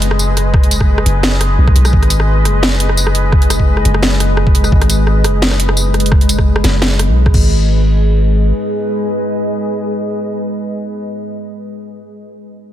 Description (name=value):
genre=half-time drum and bass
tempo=172 BPM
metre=4/4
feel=swing 54% on 16ths, half-time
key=G# minor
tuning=A4 = 441 Hz
part: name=deep dark ambient pad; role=sustained chords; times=0.0-11.1 s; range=G#3 to D#5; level=-18 LUFS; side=left 1 dB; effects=chorus, built-in reverb, sidechain pumping
part: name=long sustained 808-style bass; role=bass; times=0.0-8.5 s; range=F#1 to B1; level=-13 LUFS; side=equal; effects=none
part: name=drum and bass drum kit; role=drums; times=0.0-7.4 s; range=crash cymbal, hi-hat, rim click, snare drum, tambourine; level=-18 LUFS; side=equal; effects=overdrive
part: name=electronic kick drum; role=drums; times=0.5-7.4 s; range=none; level=-11 LUFS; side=equal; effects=none
room=light reverb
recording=dense, heavily limited modern master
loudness=-10 LUFS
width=side -12 dB against mid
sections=0.0-7.5 A section; 7.5-10.3 B section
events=drop 0.0-7.5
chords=0.0 G#m; 7.3 N.C.; 7.5 G#m